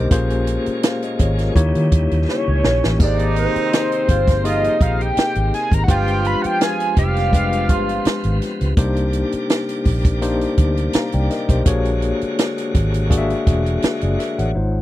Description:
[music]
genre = lush 1970s-style soul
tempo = 83 BPM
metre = 4/4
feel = swing 54% on 16ths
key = unclear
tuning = A4 = 441 Hz
[part]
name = tine electric piano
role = accompaniment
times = 0.0-14.8 s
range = Ab3 to Bb5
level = -22 LUFS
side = left 3 dB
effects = medium tremolo
[part]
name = overdriven tonewheel organ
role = sustained chords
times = 0.0-14.5 s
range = Bb2 to D5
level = -31 LUFS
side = right 1 dB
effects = slow rotary speaker
[part]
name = vintage muted fingered electric bass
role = bass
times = 0.0-14.8 s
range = Fb1 to Eb3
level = -20 LUFS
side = equal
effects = none
[part]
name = compact cocktail drum kit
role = drums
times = 0.1-14.5 s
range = hi-hat, kick drum, snare drum, splash cymbal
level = -17 LUFS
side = right 1 dB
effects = none
[part]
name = hollow square lead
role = melody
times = 2.3-8.4 s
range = C5 to B5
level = -21 LUFS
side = equal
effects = chorus
[part]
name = warm horn section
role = stabs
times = 3.0-8.4 s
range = Eb3 to G4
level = -24 LUFS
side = right 5 dB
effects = none
[sound]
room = little or no reverb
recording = dry, close 1970s-style studio recording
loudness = -16 LUFS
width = side -14 dB against mid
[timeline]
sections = 0.0-14.5 A section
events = drum fill 2.3-3.0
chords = 0.1 Bbm9; 1.6 Eb7b9; 3.0 Abmaj9; 5.9 G7b9; 8.8 Cm9; 11.7 Bb7alt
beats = | 0.11 0.83 1.55 2.28 | 3.00 3.72 4.44 5.17 | 5.89 6.61 7.33 8.05 | 8.77 9.50 10.22 10.94 | 11.66 12.38 13.10 13.83 | 14.55

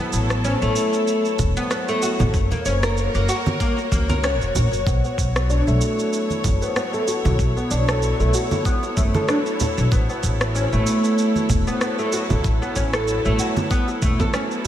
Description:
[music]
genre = organic downtempo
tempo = 95 BPM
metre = 4/4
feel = swing 56% on 16ths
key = unclear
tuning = A4 = 440 Hz
[part]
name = dark chamber string section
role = sustained chords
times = 0.0-14.7 s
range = F#3 to C#5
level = -26 LUFS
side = left 2 dB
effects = sidechain pumping
[part]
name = oud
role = arpeggios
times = 0.0-14.4 s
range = A3 to A#4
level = -23 LUFS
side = equal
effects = vintage 12-bit sampler grit, low-pass filter, ping-pong delay, slapback echo
[part]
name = upright bass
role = bass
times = 0.1-14.2 s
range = E1 to C#2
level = -22 LUFS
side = equal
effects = sidechain pumping
[part]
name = electronic shaker, rim click and congas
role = drums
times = 0.1-14.7 s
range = none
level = -27 LUFS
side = right 1 dB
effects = studio reverb
[part]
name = electronic kick drum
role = drums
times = 1.4-14.3 s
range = none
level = -22 LUFS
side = equal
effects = studio reverb
[part]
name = congas and bongos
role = percussion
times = 1.4-14.7 s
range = none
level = -28 LUFS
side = right 2 dB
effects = none
[sound]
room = moderate lush hall reverb, RT60 2.1 s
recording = big arena sound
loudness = -18 LUFS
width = side -11 dB against mid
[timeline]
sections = 0.0-4.9 A section; 4.9-14.7 A section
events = filter sweep on oud 4.9-14.7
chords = 0.0 A; 2.3 F#; 4.9 B7(no3); 9.9 A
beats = 0.45 1.08 1.71 | 2.34 2.97 3.60 4.24 | 4.87 5.50 6.13 6.76 | 7.39 8.02 8.66 9.29 | 9.92 10.55 11.18 11.81 | 12.45 13.08 13.71 14.34

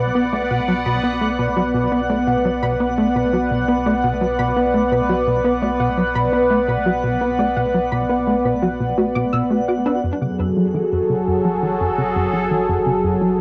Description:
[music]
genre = ambient, sequencer-driven space music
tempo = 85 BPM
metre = 4/4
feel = straight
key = unclear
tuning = A4 = 440 Hz
[part]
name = sweeping resonant pad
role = sustained chords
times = 0.0-13.4 s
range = F#3 to F#5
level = -21 LUFS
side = equal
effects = chorus, cassette tape, plate reverb
[part]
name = tight sequencer bass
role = riff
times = 0.0-13.4 s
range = F#2 to F#4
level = -24 LUFS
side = equal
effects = lush chorus, cassette tape, delay
[part]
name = warm sub bass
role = bass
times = 0.0-13.4 s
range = F#1 to B1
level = -35 LUFS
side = equal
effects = tube saturation
[part]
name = twinkling granular texture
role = texture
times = 0.0-10.1 s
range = F#5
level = -38 LUFS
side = equal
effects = built-in reverb, cassette tape, plate reverb
[part]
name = soft round pluck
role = arpeggios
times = 0.2-10.0 s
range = F#4 to E6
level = -28 LUFS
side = equal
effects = chorus, cassette tape, delay, plate reverb
[sound]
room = wet booth ambience, RT60 0.2 s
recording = home recording on cassette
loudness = -19 LUFS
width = mono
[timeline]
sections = 0.0-10.0 A section; 10.0-13.4 B section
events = none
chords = 0.0 Bm; 10.0 F#madd9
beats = 0.15 0.86 | 1.56 2.27 2.98 3.68 | 4.39 5.09 5.80 6.51 | 7.21 7.92 8.62 9.33 | 10.04 10.74 11.45 12.15 | 12.86

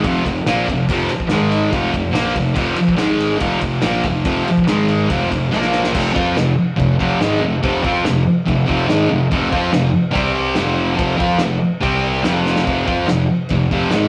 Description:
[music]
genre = garage rock duo or trio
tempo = 142 BPM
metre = 4/4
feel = straight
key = unclear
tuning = A4 = 442 Hz
[part]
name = thick fuzz guitar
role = riff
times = 0.0-14.1 s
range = F2 to F4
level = -18 LUFS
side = equal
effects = distortion
[part]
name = fuzz picked electric bass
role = bass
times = 0.0-14.1 s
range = F1 to F2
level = -29 LUFS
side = equal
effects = overdrive
[part]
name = cloth-damped thuddy drum kit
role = drums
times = 0.0-14.0 s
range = crash cymbal, kick drum, ride cymbal, snare drum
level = -26 LUFS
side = equal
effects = none
[sound]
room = wet stone room reverb, RT60 1.0 s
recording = rough rehearsal-room recording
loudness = -17 LUFS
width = mono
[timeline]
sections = 0.0-6.0 A section; 6.0-12.7 B section; 12.7-14.1 C section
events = drum fill 5.5-6.0, 12.5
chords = 0.0 F5; 1.3 Ab5; 1.7 F5; 3.0 Ab5; 3.4 F5; 4.7 Ab5; 5.1 F5; 5.5 Bb5; 6.0 F5; 10.2 C5; 10.6 F5; 11.8 C5; 12.3 F5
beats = 0.03 0.45 | 0.88 1.30 1.72 2.15 | 2.57 3.00 3.42 3.84 | 4.26 4.69 5.11 5.53 | 5.95 6.37 6.79 7.21 | 7.63 8.05 8.47 8.89 | 9.31 9.73 10.15 10.57 | 10.99 11.41 11.84 12.26 | 12.68 13.10 13.52 13.94

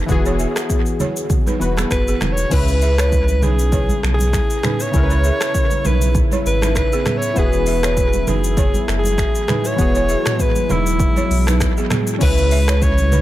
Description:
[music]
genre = afrobeats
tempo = 99 BPM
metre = 4/4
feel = swing 55% on 16ths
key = unclear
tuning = A4 = 440 Hz
[part]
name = warm analog keys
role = accompaniment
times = 0.0-13.2 s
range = C#3 to B4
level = -24 LUFS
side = left 2 dB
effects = chorus, dub echo
[part]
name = warm sub bass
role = bass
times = 0.0-13.2 s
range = E1 to C#2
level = -18 LUFS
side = equal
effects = none
[part]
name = afro-pop drum kit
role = drums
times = 0.1-13.2 s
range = crash cymbal, finger snaps, hi-hat, kick drum, rim click, shaker, toms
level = -20 LUFS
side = equal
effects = none
[part]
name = congas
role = percussion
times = 0.1-13.2 s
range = none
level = -26 LUFS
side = right 2 dB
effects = dub echo
[part]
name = balafon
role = riff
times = 0.3-13.2 s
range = B3 to E5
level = -27 LUFS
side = right 4 dB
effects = dub echo
[part]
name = clear alto saxophone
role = melody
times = 1.9-13.2 s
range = E4 to C#5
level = -22 LUFS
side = equal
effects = dub echo
[part]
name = deep dark ambient pad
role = sustained chords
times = 3.6-13.2 s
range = C#3 to E4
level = -27 LUFS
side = equal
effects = chorus, built-in reverb
[sound]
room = little or no reverb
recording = echo-heavy mix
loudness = -15 LUFS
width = side -14 dB against mid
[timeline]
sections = 0.0-2.5 A section; 2.5-12.2 B section; 12.2-13.2 C section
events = none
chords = 0.0 Eadd9; 2.5 C#m7; 7.4 Eadd9; 12.2 C#m7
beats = | 0.09 0.70 1.30 1.91 | 2.51 3.12 3.73 4.33 | 4.94 5.54 6.15 6.76 | 7.36 7.97 8.57 9.18 | 9.79 10.39 11.00 11.61 | 12.21 12.82

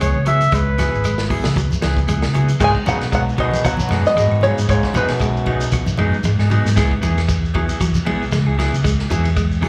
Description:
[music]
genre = afrobeat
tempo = 115 BPM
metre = 4/4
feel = swing 56% on 16ths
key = G# minor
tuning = A4 = 440 Hz
[part]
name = warm trumpet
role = melody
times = 0.0-1.3 s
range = B4 to E5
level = -24 LUFS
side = equal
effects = slapback echo, tape echo
[part]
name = clean electric guitar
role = arpeggios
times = 0.0-9.7 s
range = F#3 to G#3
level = -27 LUFS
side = equal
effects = slapback echo
[part]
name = clean electric guitar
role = stabs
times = 0.0-9.7 s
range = F#3 to G#4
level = -28 LUFS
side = equal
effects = spring reverb, slapback echo, tape echo
[part]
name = hollow-body short-scale fingered electric bass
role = bass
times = 0.0-9.7 s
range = G#1 to C#3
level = -21 LUFS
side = equal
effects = none
[part]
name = crunchy breakbeat drum kit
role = drums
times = 0.0-9.7 s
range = crash cymbal, hi-hat, kick drum, ride cymbal, snare drum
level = -26 LUFS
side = equal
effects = none
[part]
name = congas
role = percussion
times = 0.0-9.7 s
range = none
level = -30 LUFS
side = equal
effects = none
[part]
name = shekere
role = percussion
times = 0.0-9.6 s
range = none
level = -31 LUFS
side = equal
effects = none
[part]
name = claves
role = percussion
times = 0.1-9.7 s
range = none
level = -40 LUFS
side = equal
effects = none
[part]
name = open-back banjo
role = melody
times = 2.6-6.0 s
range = B4 to G#5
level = -22 LUFS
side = equal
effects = slapback echo
[part]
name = brilliant trombone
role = second line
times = 2.6-6.0 s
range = F#2 to D#3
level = -30 LUFS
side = equal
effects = slapback echo
[part]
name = clear trombone section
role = second line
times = 2.6-6.0 s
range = B2 to G#3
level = -30 LUFS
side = equal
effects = slapback echo
[sound]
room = light reverb, small room ambience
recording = live gig heard through the venue's PA, club reverb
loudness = -18 LUFS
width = mono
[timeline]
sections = 0.0-2.6 A section; 2.6-9.7 B section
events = trumpet solo 0.0-2.6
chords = 0.0 C#m7; 2.6 G#m7; 6.8 C#m7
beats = 0.00 | 0.52 1.04 1.56 2.08 | 2.60 3.12 3.65 4.17 | 4.68 5.21 5.72 6.25 | 6.76 7.29 7.80 8.32 | 8.85 9.37

